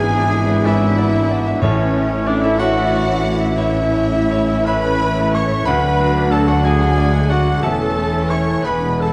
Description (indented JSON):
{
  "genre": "classical, romantic movement for piano and orchestra",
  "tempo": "52-64 BPM (dotted quarters)",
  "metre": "12/8",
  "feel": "rubato",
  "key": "A major",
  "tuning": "A4 = 435 Hz",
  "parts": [
    { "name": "bright concert grand piano", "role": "melody", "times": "0.0-9.1 s", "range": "D2 to C#6", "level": "-22 LUFS", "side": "equal", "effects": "none" },
    { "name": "dark symphonic violin section", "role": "melody", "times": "0.0-9.1 s", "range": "C#4 to D4", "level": "-31 LUFS", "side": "equal", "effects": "none" },
    { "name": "large flute ensemble", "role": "second line", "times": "0.0-9.1 s", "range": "C#5 to C#6", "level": "-33 LUFS", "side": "equal", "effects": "none" },
    { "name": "warm clarinet", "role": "second line", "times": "0.0-9.1 s", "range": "C#4 to C#5", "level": "-29 LUFS", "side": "equal", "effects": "none" },
    { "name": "warm oboe", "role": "second line", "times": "0.0-9.1 s", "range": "C#4 to C#5", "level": "-30 LUFS", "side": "equal", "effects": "none" },
    { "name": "warm studio violin section", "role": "second line", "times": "0.0-9.1 s", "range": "C#5 to C#6", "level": "-31 LUFS", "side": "equal", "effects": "none" },
    { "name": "mellow bassoon", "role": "accompaniment", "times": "0.0-9.1 s", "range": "B3 to F#4", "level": "-28 LUFS", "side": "equal", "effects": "none" },
    { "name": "rich studio viola section", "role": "accompaniment", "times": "0.0-9.1 s", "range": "C#4 to C#5", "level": "-30 LUFS", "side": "equal", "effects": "none" },
    { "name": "warm French horn section", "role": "sustained chords", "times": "0.0-9.1 s", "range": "C#4 to F#4", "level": "-29 LUFS", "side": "equal", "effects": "none" },
    { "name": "warm trombone section", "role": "sustained chords", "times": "0.0-9.1 s", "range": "D3 to B3", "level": "-27 LUFS", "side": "equal", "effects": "none" },
    { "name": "clear symphonic double bass section", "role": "bass", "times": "0.0-9.1 s", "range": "E1 to D2", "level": "-27 LUFS", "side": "equal", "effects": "none" },
    { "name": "rich symphonic cello section", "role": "bass", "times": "0.0-9.1 s", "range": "D2 to A2", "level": "-25 LUFS", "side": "equal", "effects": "none" },
    { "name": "timpani", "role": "percussion", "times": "1.6-2.6 s", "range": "A2", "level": "-27 LUFS", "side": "equal", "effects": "none" }
  ],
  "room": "moderate scoring stage reverb, RT60 1.7 s",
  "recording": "none",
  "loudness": "-17 LUFS",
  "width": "mono",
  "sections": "0.0-9.1 A section",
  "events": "none",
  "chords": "0.0 E7/G#; 1.6 A; 5.7 Bm/D; 7.6 A/E"
}